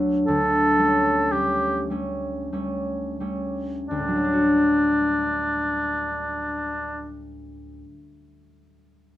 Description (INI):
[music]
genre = classical, romantic duo for oboe and harp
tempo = 42-61 BPM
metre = 3/4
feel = rubato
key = D major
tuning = A4 = 441 Hz
[part]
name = concert harp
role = accompaniment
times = 0.0-7.9 s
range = D2 to F#4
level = -24 LUFS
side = left 1 dB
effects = none
[part]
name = mellow oboe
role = melody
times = 0.3-7.2 s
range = D4 to A4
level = -23 LUFS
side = right 1 dB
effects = none
[sound]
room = moderate studio reverb, RT60 0.8 s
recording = none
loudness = -21 LUFS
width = side -14 dB against mid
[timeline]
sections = 0.0-3.9 A section; 3.9-7.9 B section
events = slowing down 0.0-3.9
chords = 0.3 A7/D; 3.9 D